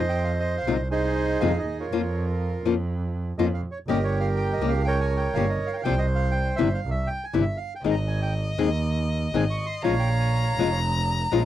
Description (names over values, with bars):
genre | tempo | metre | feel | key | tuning
tango | 121 BPM | 4/4 | rubato | unclear | A4 = 440 Hz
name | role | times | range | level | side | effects
bandoneon | melody | 0.0-11.4 s | Eb4 to Db6 | -28 LUFS | right 3 dB | none
clear double bass | bass | 0.0-11.4 s | F1 to F2 | -26 LUFS | right 2 dB | none
nylon-string guitar | accompaniment | 0.7-11.4 s | C3 to Ab4 | -24 LUFS | left 7 dB | none
warm violin | second line | 7.8-11.4 s | Eb5 to Bb5 | -30 LUFS | left 3 dB | none
room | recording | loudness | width
little or no reverb | dry, close 1970s-style studio recording | -22 LUFS | side -12 dB against mid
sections
0.0-11.4 A section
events
none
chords
0.0 Fm7; 1.9 Bbm/F; 3.9 Gdim; 5.8 Csus4; 6.8 C; 7.8 Ab; 9.8 Bbm7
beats
0.41 0.91 1.41 | 1.90 2.40 2.89 3.38 | 3.87 4.36 4.85 5.34 | 5.84 6.33 6.83 7.34 | 7.84 8.35 8.85 9.35 | 9.84 10.34 10.83 11.32